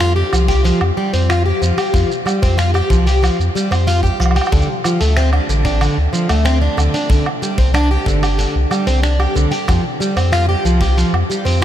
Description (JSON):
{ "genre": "folktronica", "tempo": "93 BPM", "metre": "4/4", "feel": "straight", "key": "F major", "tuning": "A4 = 439 Hz", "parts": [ { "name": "fingerpicked plugged-in twelve-string acoustic guitar", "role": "arpeggios", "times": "0.0-11.6 s", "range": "D3 to G4", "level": "-17 LUFS", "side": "equal", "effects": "tape echo" }, { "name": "warm sub bass", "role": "bass", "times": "0.0-11.6 s", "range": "G1 to F2", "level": "-15 LUFS", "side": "equal", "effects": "none" }, { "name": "lo-fi sampler-style drum kit", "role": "drums", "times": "0.0-11.6 s", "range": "finger snaps, hi-hat, shaker, woodblock", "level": "-23 LUFS", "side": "right 2 dB", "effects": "studio reverb" }, { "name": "kick drum", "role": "drums", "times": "0.5-10.9 s", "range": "none", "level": "-19 LUFS", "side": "equal", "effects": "studio reverb" } ], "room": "moderate huge ambient reverb, RT60 8.1 s", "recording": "dreamy mix soaked in reverb", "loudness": "-13 LUFS", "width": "side -11 dB against mid", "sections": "0.0-11.6 A section", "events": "none", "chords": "0.0 Fsus2; 4.5 Dm; 7.1 Csus2; 9.7 Fsus2" }